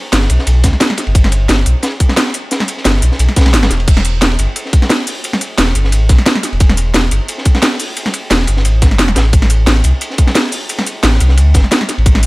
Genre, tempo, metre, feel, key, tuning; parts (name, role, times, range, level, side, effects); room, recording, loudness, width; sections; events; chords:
liquid drum and bass; 176 BPM; 4/4; swing 54% on 16ths; A4 = 436 Hz
sub bass with octave; bass; 0.1-12.3 s; E1 to D2; -12 LUFS; equal
crunchy breakbeat drum kit; drums; 0.1-12.3 s; hi-hat, ride cymbal, snare drum; -19 LUFS; equal; high-pass filter on cymbals, high-pass filter on hats, high-pass filter on snare, high-pass filter on room
drum and bass drum kit; drums; 0.1-12.3 s; crash cymbal, hi-hat, snare drum; -15 LUFS; equal
electronic kick drum; drums; 0.6-12.1 s; -9 LUFS; equal
small room ambience; -10 LUFS; side -22 dB against mid
0.0-12.3 A section